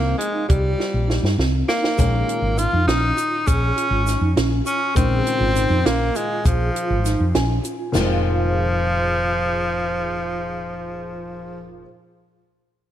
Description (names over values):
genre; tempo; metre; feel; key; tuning
progressive instrumental, band music in an uneven meter; 201 BPM (eighths); 5/8; straight; F minor; A4 = 440 Hz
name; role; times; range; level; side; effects
clear tenor saxophone; melody; 0.0-11.7 s; F3 to F4; -22 LUFS; equal; slapback echo
warm baby grand piano; accompaniment; 0.0-11.8 s; Bb2 to Ab5; -30 LUFS; left 4 dB; none
mellow tine electric piano; arpeggios; 0.0-11.9 s; C4 to F5; -28 LUFS; right 4 dB; ensemble chorus, slapback echo
woody fretless electric bass; bass; 0.0-11.8 s; F1 to G2; -22 LUFS; equal; none
compact cocktail drum kit; drums; 0.2-8.1 s; china cymbal, hi-hat, kick drum, snare drum, splash cymbal; -23 LUFS; equal; none
egg shaker; percussion; 2.0-8.2 s; none; -39 LUFS; left 7 dB; none
room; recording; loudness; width
light reverb, studio reverb; none; -18 LUFS; side -11 dB against mid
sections
0.0-7.9 A section; 7.9-10.9 B section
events
drum fill 0.8-2.0; grand piano fill 7.0-7.9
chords
0.0 Cm7; 2.0 Bbm7; 7.9 Fm7